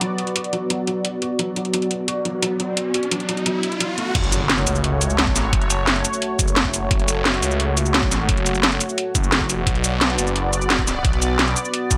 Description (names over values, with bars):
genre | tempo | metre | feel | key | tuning
dark technical drum and bass | 174 BPM | 4/4 | straight | F# minor | A4 = 442 Hz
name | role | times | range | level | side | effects
sweeping resonant pad | sustained chords | 0.0-12.0 s | A3 to D5 | -27 LUFS | equal | chorus, sidechain pumping
felt-muted upright piano | arpeggios | 0.0-4.1 s | F#3 to F#4 | -29 LUFS | equal | sidechain pumping, delay
drum and bass drum kit | drums | 0.0-12.0 s | cabasa, crash cymbal, hi-hat, snare drum | -23 LUFS | equal | none
riser and impact | sound effects | 2.4-5.5 s | none | -31 LUFS | equal | none
phased detuned saw bass | bass | 4.2-12.0 s | F#1 to C#2 | -25 LUFS | equal | phaser, tube saturation, sidechain pumping
electronic kick drum | drums | 4.2-12.0 s | none | -24 LUFS | equal | overdrive
room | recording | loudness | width
light reverb | none | -20 LUFS | mono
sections
0.0-4.2 A section; 4.2-12.0 B section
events
riser 2.4-4.2; drop 4.2-12.0; impact 4.2-5.5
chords
0.0 Bm; 4.2 F#m; 9.7 Bm